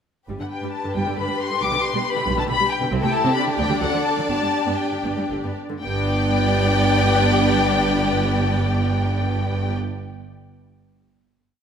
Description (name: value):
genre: quick classical-period movement for string orchestra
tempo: 112-140 BPM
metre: 3/4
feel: straight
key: G major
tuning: A4 = 440 Hz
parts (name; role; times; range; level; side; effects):
- rich studio violin section; second line; 0.3-9.7 s; G4 to D5; -26 LUFS; left 2 dB; none
- rich studio viola section; accompaniment; 0.3-9.7 s; D3 to E4; -25 LUFS; right 1 dB; none
- warm studio cello section; bass; 0.3-9.7 s; G2 to D3; -26 LUFS; right 2 dB; none
- warm studio double bass section; bass; 0.3-9.7 s; G1 to D2; -26 LUFS; right 3 dB; none
- warm studio violin section; melody; 0.4-9.7 s; F#5 to D6; -24 LUFS; left 4 dB; none
room: moderate scoring stage reverb, RT60 1.8 s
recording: none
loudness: -18 LUFS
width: side -7 dB against mid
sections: 0.3-5.8 A section; 5.8-9.0 final chord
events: slowing down 2.3-5.8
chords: 0.3 G; 1.6 G/B; 2.9 Am7/C; 3.4 G5/D; 3.8 D; 4.3 G5; 5.8 G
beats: | 0.29 0.74 1.18 | 1.62 2.06 2.49 | 2.92 3.36 3.82 | 4.30 4.79 5.31 | 5.83 6.36 6.89 | 7.42 7.94 8.46